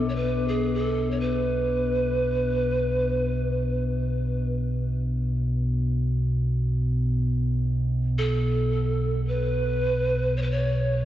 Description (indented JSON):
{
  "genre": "world meditative, free-time meditation music",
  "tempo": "free time",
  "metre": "none",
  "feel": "none",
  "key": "B minor",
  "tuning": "A4 = 442 Hz",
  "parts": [
    { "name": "breathy mellow pan flute", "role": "melody", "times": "0.0-11.1 s", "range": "G#4 to C#5", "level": "-27 LUFS", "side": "right 2 dB", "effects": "tape echo" },
    { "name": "deep rumbling drone", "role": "drone", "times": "0.0-11.1 s", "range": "B1 to B2", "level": "-25 LUFS", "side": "equal", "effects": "built-in reverb" },
    { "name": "bronze singing bowl", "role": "texture", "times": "0.0-8.5 s", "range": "B3 to D4", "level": "-33 LUFS", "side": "left 7 dB", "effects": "none" }
  ],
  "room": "wet church reverb, RT60 2.9 s",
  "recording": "worn, warbling old tape, cassette tape, warbly pitch drift, nothing above 7.9 kHz",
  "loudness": "-23 LUFS",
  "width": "side -12 dB against mid",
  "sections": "0.0-11.1 A section",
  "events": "none",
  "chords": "none",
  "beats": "free time"
}